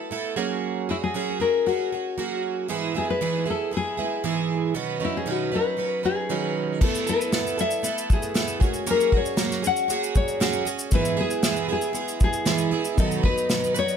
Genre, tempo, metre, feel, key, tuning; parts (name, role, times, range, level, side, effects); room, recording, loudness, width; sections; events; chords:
acoustic pop; 117 BPM; 4/4; straight; E major; A4 = 440 Hz
nylon-string guitar; melody; 0.0-14.0 s; E4 to F#5; -26 LUFS; left 5 dB; digital delay
picked plugged-in twelve-string acoustic guitar; accompaniment; 0.0-14.0 s; G#2 to B4; -26 LUFS; right 6 dB
dark upright piano; accompaniment; 6.8-14.0 s; G#3 to D#5; -36 LUFS; left 7 dB
unplugged drum kit; drums; 6.8-14.0 s; crash cymbal, kick drum, shaker, snare drum; -24 LUFS; equal
light reverb; -22 LUFS; side -7 dB against mid
0.0-6.8 A section; 6.8-14.0 B section
0.4 F#add9; 2.7 E/G#; 4.8 Badd9; 6.8 Asus2; 8.6 F#add9; 10.9 E/G#; 13.0 B